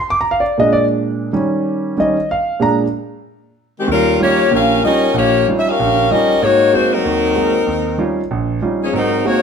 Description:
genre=jazz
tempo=190 BPM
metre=4/4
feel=swing 62% on 8ths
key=Eb major from 3.9 s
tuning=A4 = 436 Hz
part: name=warm concert grand piano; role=accompaniment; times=0.0-9.4 s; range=Bb1 to D6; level=-16 LUFS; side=right 2 dB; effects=none
part: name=clear saxophone section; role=melody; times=3.8-9.4 s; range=Eb3 to F5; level=-13 LUFS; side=left 2 dB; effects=none
room=moderate large studio reverb, RT60 1.2 s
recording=none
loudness=-13 LUFS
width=side -6 dB against mid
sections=0.0-3.9 A section; 3.9-9.4 B section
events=grand piano solo 0.0-3.9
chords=0.0 Bb7; 1.3 Eb9; 2.6 Bb7; 3.9 Eb9; 6.4 Ab9; 7.7 Eb9

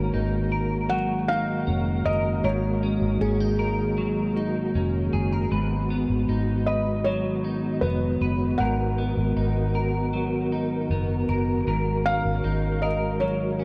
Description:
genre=dream pop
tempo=78 BPM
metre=4/4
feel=straight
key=unclear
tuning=A4 = 441 Hz
part: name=felt-muted upright piano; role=melody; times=0.0-13.6 s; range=G#4 to F#5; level=-32 LUFS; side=equal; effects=tape echo
part: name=mellow tonewheel organ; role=sustained chords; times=0.0-13.6 s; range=D#3 to A#4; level=-30 LUFS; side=equal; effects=chorus vibrato, stopped rotary speaker
part: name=clean electric guitar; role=arpeggios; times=0.0-13.6 s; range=G#2 to B4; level=-31 LUFS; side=equal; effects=analog chorus, tape echo
part: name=vintage muted fingered electric bass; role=bass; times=0.0-13.6 s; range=E#1 to G#1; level=-30 LUFS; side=equal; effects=none
room=moderate huge ambient reverb, RT60 8.2 s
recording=dark, warm production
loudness=-25 LUFS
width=mono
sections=0.0-13.6 A section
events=none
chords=0.0 F#69; 5.5 G#m7; 8.6 Bmaj7/G#; 11.7 F#69

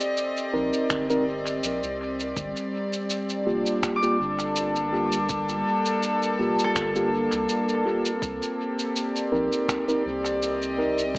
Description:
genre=ambient dub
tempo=82 BPM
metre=4/4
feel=swing 54% on 16ths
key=G minor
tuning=A4 = 445 Hz
part: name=warm studio string section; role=sustained chords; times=0.0-11.2 s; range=G3 to Eb5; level=-26 LUFS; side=equal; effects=none
part: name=electronic cabasa and finger snaps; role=drums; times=0.0-11.2 s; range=none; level=-31 LUFS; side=equal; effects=overdrive, dub echo
part: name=mellow tine electric piano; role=stabs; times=0.5-11.0 s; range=Bb3 to Bb4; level=-28 LUFS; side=equal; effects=slow stereo tremolo, dub echo
part: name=soft dub sub bass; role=bass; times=0.5-11.2 s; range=F1 to C2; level=-39 LUFS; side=equal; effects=none
part: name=electronic kick drum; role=drums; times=0.9-11.2 s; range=none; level=-36 LUFS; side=equal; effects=overdrive
part: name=concert harp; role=arpeggios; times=4.0-8.8 s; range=A4 to D6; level=-32 LUFS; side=equal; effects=analog delay
room=moderate spring reverb, RT60 1.7 s, digital ambience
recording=echo-heavy mix, small speaker sound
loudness=-23 LUFS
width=side -24 dB against mid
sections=0.0-2.4 A section; 2.4-11.2 B section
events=none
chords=0.0 Cm7; 2.4 Gm7; 8.2 Cm7

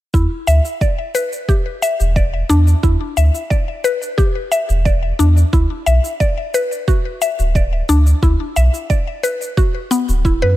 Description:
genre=organic downtempo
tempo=89 BPM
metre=4/4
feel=straight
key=E minor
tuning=A4 = 440 Hz
part: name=mallet-like synth pluck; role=arpeggios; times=0.1-10.6 s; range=B3 to E5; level=-19 LUFS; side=left 2 dB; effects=chorus, ping-pong delay
part: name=warm sub bass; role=bass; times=0.1-10.5 s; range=D1 to F#2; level=-14 LUFS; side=equal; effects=sidechain pumping
part: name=electronic kick drum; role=drums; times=0.1-10.4 s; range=none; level=-16 LUFS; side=equal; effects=overdrive
part: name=shaker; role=drums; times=0.1-10.4 s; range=none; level=-29 LUFS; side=right 2 dB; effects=overdrive
room=little or no reverb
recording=none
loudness=-14 LUFS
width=side -15 dB against mid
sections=0.1-10.6 A section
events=none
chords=0.1 E7(no3); 5.5 D5

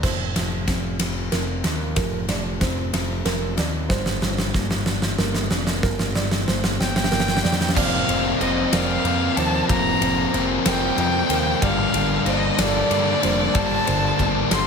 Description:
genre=post-rock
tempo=62 BPM (dotted quarters)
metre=6/8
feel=straight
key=unclear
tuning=A4 = 440 Hz
part: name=felt-muted upright piano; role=arpeggios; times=0.0-14.5 s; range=Bb4 to D5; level=-32 LUFS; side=right 7 dB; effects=slapback echo
part: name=mellow electric guitar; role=arpeggios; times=0.0-14.7 s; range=G2 to Bb4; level=-31 LUFS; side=left 4 dB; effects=slapback echo
part: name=growling picked electric bass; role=bass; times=0.0-14.7 s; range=F1 to G2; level=-27 LUFS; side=equal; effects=overdrive
part: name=huge arena drum kit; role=drums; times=0.0-14.7 s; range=crash cymbal, kick drum, ride cymbal, snare drum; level=-24 LUFS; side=right 1 dB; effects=none
part: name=rich violin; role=melody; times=6.8-14.7 s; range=D5 to C6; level=-24 LUFS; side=equal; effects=slapback echo
part: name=biting overdriven guitar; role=riff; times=7.7-14.7 s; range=F2 to D4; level=-24 LUFS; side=left 13 dB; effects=spring reverb
part: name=sludgy distorted guitar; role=riff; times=7.8-14.7 s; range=F2 to D4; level=-25 LUFS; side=right 14 dB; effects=overdrive
room=light reverb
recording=none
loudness=-19 LUFS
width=side -6 dB against mid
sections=0.0-7.8 A section; 7.8-14.7 B section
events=build-up 0.0-7.8; drum fill 0.0-7.8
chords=0.0 Fsus4; 3.9 Gm; 7.8 Fsus4; 11.6 Gmadd9

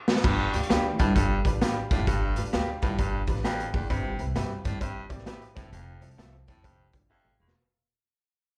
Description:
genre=uptempo 1960s-style soul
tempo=131 BPM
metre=4/4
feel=swing 65% on 8ths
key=G mixolydian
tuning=A4 = 441 Hz
part: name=raw garage drum kit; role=drums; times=0.1-7.6 s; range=crash cymbal, hi-hat, kick drum, snare drum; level=-30 LUFS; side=equal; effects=none
part: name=clear upright piano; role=accompaniment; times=0.2-7.8 s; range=F3 to F5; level=-38 LUFS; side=equal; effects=plate reverb
part: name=bright baritone saxophone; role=riff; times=0.2-7.5 s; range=E2 to C3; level=-35 LUFS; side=equal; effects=none
part: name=upright bass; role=bass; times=0.2-7.5 s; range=E1 to G2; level=-32 LUFS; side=equal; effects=none
part: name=electric guitar through a small old amp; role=stabs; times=0.7-7.3 s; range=F4 to F5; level=-37 LUFS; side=equal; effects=spring reverb, plate reverb, slapback echo
room=little or no reverb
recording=live gig heard through the venue's PA, club reverb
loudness=-27 LUFS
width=mono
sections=0.2-7.6 A section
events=drum fill 0.0, 7.1-7.6; band accent 0.0; fade-out 0.2-7.6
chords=0.2 G7; 3.9 Cmaj7/G; 5.5 Fmaj7

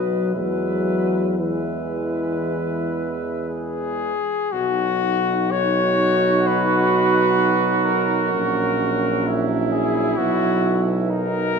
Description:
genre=classical, hymn-like piece for brass band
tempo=54-67 BPM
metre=4/4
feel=rubato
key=E major, B major from 4.5 s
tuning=A4 = 440 Hz
part: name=mellow cornet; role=melody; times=0.0-11.6 s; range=F#4 to E5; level=-23 LUFS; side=left 5 dB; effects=none
part: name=warm flugelhorn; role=second line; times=0.0-11.6 s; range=D#4 to B4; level=-24 LUFS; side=right 6 dB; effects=none
part: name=mellow euphonium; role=accompaniment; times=0.0-11.6 s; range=E3 to D#4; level=-26 LUFS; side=left 2 dB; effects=none
part: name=warm trombone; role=accompaniment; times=0.0-11.6 s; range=F#3 to G#3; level=-28 LUFS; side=right 4 dB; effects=none
part: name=clear tuba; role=bass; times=0.0-11.6 s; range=A#1 to E2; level=-25 LUFS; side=right 1 dB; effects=none
room=wet concert hall reverb, RT60 1.9 s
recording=minimal, uncompressed stereo recording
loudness=-18 LUFS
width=side -5 dB against mid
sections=0.0-4.5 A section; 4.5-11.6 B section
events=none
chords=0.4 E; 4.5 B; 8.3 F#7/A#; 10.2 B

